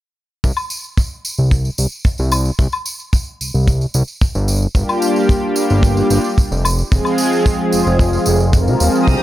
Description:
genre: nu-disco, nu disco.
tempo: 111 BPM.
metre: 4/4.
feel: straight.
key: unclear.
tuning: A4 = 442 Hz.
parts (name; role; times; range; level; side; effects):
fat analog bass; bass; 0.4-9.2 s; Eb1 to C2; -16 LUFS; equal; none.
kick drum; drums; 0.4-9.2 s; none; -14 LUFS; equal; studio reverb.
tambourine; percussion; 0.4-9.2 s; none; -26 LUFS; right 1 dB; none.
woodblock; drums; 0.6-7.2 s; none; -22 LUFS; left 4 dB; studio reverb.
warm analog pad; accompaniment; 4.7-9.2 s; Eb3 to Bb4; -16 LUFS; equal; chorus, cassette tape, sidechain pumping, digital delay.
warm studio violin section; sustained chords; 9.1-9.2 s; G4 to Eb6; -20 LUFS; left 1 dB; sidechain pumping.
room: little or no reverb.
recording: none.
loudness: -14 LUFS.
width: side -14 dB against mid.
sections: 0.4-9.2 A section.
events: none.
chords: 0.4 C5; 4.5 Gm7; 6.7 Fm.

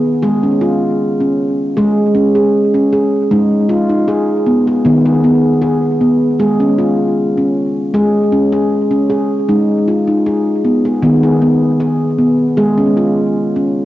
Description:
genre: world meditative, meditative tuned percussion.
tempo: 78 BPM.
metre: 4/4.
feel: straight.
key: unclear.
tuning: A4 = 440 Hz.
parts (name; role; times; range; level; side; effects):
handpan; solo; 0.0-13.8 s; D#3 to G#4; -11 LUFS; equal; analog delay.
room: wet spring reverb, RT60 2.3 s.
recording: home recording on cassette, nothing above 7.9 kHz.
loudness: -11 LUFS.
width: side -15 dB against mid.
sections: 0.0-13.8 A section.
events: none.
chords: 0.2 C#/G#; 3.3 G#m; 6.4 C#/G#; 9.5 G#m; 12.6 C#/G#.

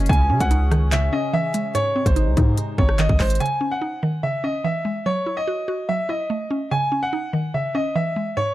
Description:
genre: hip hop, drill.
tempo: 145 BPM.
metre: 4/4.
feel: half-time.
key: C# harmonic minor.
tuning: A4 = 440 Hz.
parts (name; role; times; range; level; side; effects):
bright concert grand piano; melody; 0.0-8.5 s; B#4 to G#5; -24 LUFS; equal; digital delay.
mallet-like synth pluck; accompaniment; 0.0-8.5 s; G#2 to F#4; -25 LUFS; right 2 dB; chorus.
sweeping resonant pad; sustained chords; 0.0-3.4 s; B#2 to G#4; -31 LUFS; left 2 dB; chorus, phaser.
hard-hitting 808-style bass; bass; 0.0-3.4 s; G#1 to C#3; -19 LUFS; equal; none.
drill drum kit; drums; 0.1-3.5 s; handclaps, hi-hat, kick drum, rim click; -21 LUFS; equal; none.
room: little or no reverb.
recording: none.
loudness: -19 LUFS.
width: side -15 dB against mid.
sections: 0.0-3.4 A section; 3.4-8.5 B section.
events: none.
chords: 0.1 C#madd9; 1.7 G#; 3.4 C#madd9; 5.1 F#m7; 6.7 C#madd9.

